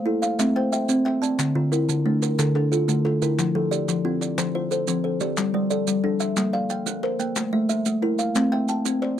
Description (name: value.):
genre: southern african traditional, mbira-style interlocking cycle.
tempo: 121 BPM (dotted quarters).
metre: 12/8.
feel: straight.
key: unclear.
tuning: A4 = 439 Hz.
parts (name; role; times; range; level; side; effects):
kalimba; arpeggios; 0.0-9.2 s; D3 to G5; -23 LUFS; left 3 dB; none.
kalimba; arpeggios; 0.0-9.2 s; D3 to A5; -25 LUFS; right 4 dB; none.
group handclap; percussion; 0.2-9.1 s; none; -33 LUFS; left 8 dB; none.
maracas; percussion; 0.2-9.0 s; none; -31 LUFS; right 17 dB; none.
room: little or no reverb.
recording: dry, close 1970s-style studio recording.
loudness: -20 LUFS.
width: side -10 dB against mid.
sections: 0.0-5.4 A section; 5.4-9.2 B section.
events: none.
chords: 0.4 C; 1.4 Dm; 5.4 G5; 6.4 Bb; 7.4 Am; 8.4 C.